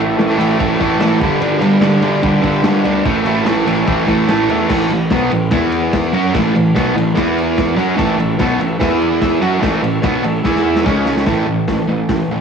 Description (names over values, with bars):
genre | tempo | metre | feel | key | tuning
garage rock duo or trio | 146 BPM | 4/4 | straight | A mixolydian | A4 = 441 Hz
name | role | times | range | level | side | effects
combo organ | sustained chords | 0.0-4.7, 8.0-11.3 s | C#4 to B5 | -26 LUFS | right 1 dB | none
fuzz guitar | riff | 0.0-12.4 s | G2 to F#4 | -14 LUFS | right 1 dB | distortion, cassette tape
fuzz picked electric bass | bass | 0.0-12.4 s | G1 to F#2 | -22 LUFS | right 1 dB | overdrive
vintage drum kit | drums | 0.2-12.2 s | crash cymbal, hi-hat, kick drum, ride cymbal, snare drum | -21 LUFS | equal | cassette tape
room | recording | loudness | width
light reverb | home recording on cassette | -12 LUFS | side -6 dB against mid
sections
0.0-4.7 A section; 4.7-11.3 B section; 11.3-12.4 C section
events
transistor combo organ fill 3.9-4.7; drum fill 10.4-11.3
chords
0.0 A; 1.2 G; 3.0 A; 4.7 A5; 5.5 E5; 6.1 A; 7.2 E5; 7.8 A; 8.8 E5; 9.4 A; 10.4 E5; 10.8 C#5; 11.3 A5